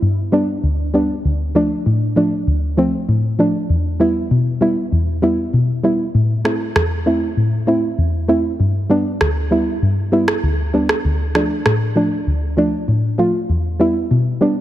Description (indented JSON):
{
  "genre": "dancehall",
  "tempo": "98 BPM",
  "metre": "4/4",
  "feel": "straight",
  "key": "unclear",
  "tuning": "A4 = 442 Hz",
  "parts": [
    { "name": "soft round pluck", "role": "accompaniment", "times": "0.0-14.6 s", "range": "D2 to F4", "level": "-15 LUFS", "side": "equal", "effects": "chorus" },
    { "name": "electronic rim click", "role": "drums", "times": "6.5-11.8 s", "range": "none", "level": "-21 LUFS", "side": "right 2 dB", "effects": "overdrive" }
  ],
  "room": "moderate lush hall reverb, RT60 2.6 s",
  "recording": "dense, heavily limited modern master",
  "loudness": "-15 LUFS",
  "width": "side -13 dB against mid",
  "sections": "0.0-14.6 A section",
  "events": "none",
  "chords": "0.0 G; 1.2 Dm; 3.7 Em; 6.1 Am; 8.6 G; 11.0 Dm; 13.5 Em",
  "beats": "0.03 0.64 | 1.25 1.86 2.47 3.09 | 3.70 4.31 4.92 5.54 | 6.15 6.76 7.37 7.98 | 8.60 9.21 9.82 10.43 | 11.04 11.66 12.27 12.88 | 13.49 14.11"
}